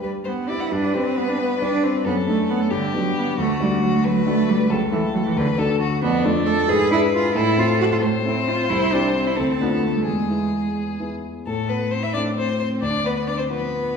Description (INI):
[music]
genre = quick classical-period movement for piano trio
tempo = 90 BPM (dotted quarters)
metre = 6/8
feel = rubato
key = G major, A minor from 6.0 s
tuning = A4 = 441 Hz
[part]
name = rich violin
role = melody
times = 0.0-14.0 s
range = D4 to F#5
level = -25 LUFS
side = left 6 dB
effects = none
[part]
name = warm cello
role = second line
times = 0.0-14.0 s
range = D3 to A4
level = -22 LUFS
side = right 3 dB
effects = none
[part]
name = warm baby grand piano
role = accompaniment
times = 0.0-14.0 s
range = C2 to B4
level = -23 LUFS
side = left 1 dB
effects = none
[sound]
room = wet recital hall reverb, RT60 1.5 s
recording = heard from further back in the room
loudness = -18 LUFS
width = side -6 dB against mid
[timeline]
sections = 0.7-11.5 A section; 11.5-14.0 B section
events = none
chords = 0.0 G; 2.1 D/F#; 2.7 G; 3.4 D; 4.7 A/C#; 5.4 D; 6.0 Dm/F; 6.7 E7/G#; 7.3 Am; 8.7 C; 9.4 Dm; 10.1 E; 11.5 Am; 12.8 Bdim/D